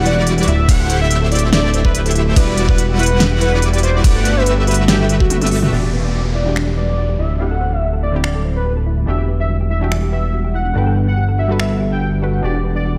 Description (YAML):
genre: future bass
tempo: 143 BPM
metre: 4/4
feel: swing 54% on 16ths, half-time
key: E minor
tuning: A4 = 439 Hz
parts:
  - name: airy dreamy lead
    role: arpeggios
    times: 0.0-5.7 s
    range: D5 to F#5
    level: -30 LUFS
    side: equal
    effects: chorus, sidechain pumping, diffuse ambient delay
  - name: thumb-piano-like synth pluck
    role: arpeggios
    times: 0.0-12.9 s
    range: D4 to F#5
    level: -30 LUFS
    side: equal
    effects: chorus, sidechain pumping, diffuse ambient delay
  - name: big bright polysynth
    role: riff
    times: 0.0-5.7 s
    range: G3 to F#5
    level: -23 LUFS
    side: equal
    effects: chorus, sidechain pumping, diffuse ambient delay
  - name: fat analog bass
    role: bass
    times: 0.0-13.0 s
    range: D1 to G1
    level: -19 LUFS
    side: equal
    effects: sidechain pumping
  - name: warm velvety synth lead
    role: melody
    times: 0.1-12.9 s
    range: F#4 to G5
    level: -25 LUFS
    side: equal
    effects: chorus, cassette tape, sidechain pumping, diffuse ambient delay
  - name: pop drum kit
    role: drums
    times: 0.1-11.7 s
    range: finger snaps, hi-hat, ride cymbal, snare drum, toms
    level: -23 LUFS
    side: equal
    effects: none
  - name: electronic kick drum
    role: drums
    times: 0.7-5.3 s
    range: none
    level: -16 LUFS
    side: equal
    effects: none
  - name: soft round pluck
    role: accompaniment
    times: 5.7-13.0 s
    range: D3 to B4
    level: -29 LUFS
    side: equal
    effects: chorus, sidechain pumping, diffuse ambient delay
  - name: ethereal airy pad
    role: sustained chords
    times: 7.4-13.0 s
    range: D3 to F#5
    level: -32 LUFS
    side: equal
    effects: none
  - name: downlifter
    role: sound effects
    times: 5.7-9.1 s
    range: none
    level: -31 LUFS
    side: equal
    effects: none
room: moderate lush hall reverb, RT60 1.7 s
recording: dreamy mix soaked in reverb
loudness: -16 LUFS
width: mono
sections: 0.0-5.7 A section; 5.7-13.0 B section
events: drop 0.0-5.7; drum fill 5.3-5.7; filter sweep on synth arpeggio sound 5.7-13.0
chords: 0.5 D9sus4; 2.4 Em9; 4.0 Gmaj9; 5.7 Em9; 7.2 D9sus4; 9.1 Em9; 10.8 Gmaj9; 12.4 Em9